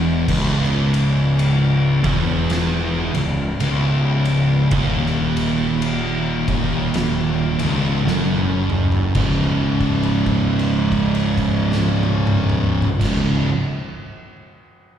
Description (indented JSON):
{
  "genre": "stoner and doom metal",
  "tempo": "54 BPM",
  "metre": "4/4",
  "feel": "swing 59% on 8ths",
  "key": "C# minor",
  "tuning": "A4 = 441 Hz",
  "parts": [
    { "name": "thick fuzz guitar", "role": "riff", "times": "0.0-13.5 s", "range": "C#2 to C#3", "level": "-22 LUFS", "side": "left 8 dB", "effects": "distortion" },
    { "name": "thick fuzz guitar", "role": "riff", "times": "0.0-13.5 s", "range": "C#2 to C#3", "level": "-20 LUFS", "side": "right 5 dB", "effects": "distortion, slapback echo" },
    { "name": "fuzz fingered electric bass", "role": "bass", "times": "0.0-13.4 s", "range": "C#1 to F#1", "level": "-24 LUFS", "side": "left 1 dB", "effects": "overdrive" },
    { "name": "oversized low-tuned drum kit", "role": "drums", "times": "0.3-13.3 s", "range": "crash cymbal, kick drum, ride cymbal, snare drum, toms", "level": "-25 LUFS", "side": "left 1 dB", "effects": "none" }
  ],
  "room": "light reverb, small room ambience",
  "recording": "live gig heard through the venue's PA, recital hall reverb",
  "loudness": "-16 LUFS",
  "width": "side -9 dB against mid",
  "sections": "0.0-9.2 A section; 9.2-13.6 B section",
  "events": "drum fill 8.0-9.2; held note 9.2-12.9",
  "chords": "0.0 C#m; 9.2 C#5",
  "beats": "| 0.28 1.39 2.50 3.61 | 4.71 5.82 6.93 8.04 | 9.15 10.26 11.38 12.48"
}